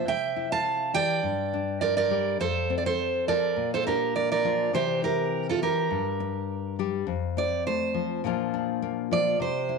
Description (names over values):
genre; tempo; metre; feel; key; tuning
highlife; 103 BPM; 4/4; swing 54% on 16ths; F major; A4 = 440 Hz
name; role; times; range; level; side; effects
fingerpicked steel-string acoustic guitar; melody; 0.0-9.8 s; F4 to A5; -25 LUFS; right 6 dB; none
nylon-string guitar; accompaniment; 0.0-9.8 s; F2 to A4; -29 LUFS; left 10 dB; none
room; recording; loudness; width
wet echo chamber reverb, RT60 1.3 s, small room ambience; 1960s-style stereo with parts hard left and right; -24 LUFS; side -4 dB against mid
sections
0.0-7.1 A section; 7.1-9.8 B section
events
steel-string acoustic guitar solo 7.1-9.8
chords
0.1 C; 1.2 Gm; 2.4 F; 3.6 Bb; 4.7 C; 5.9 Gm; 7.1 F; 8.2 Bb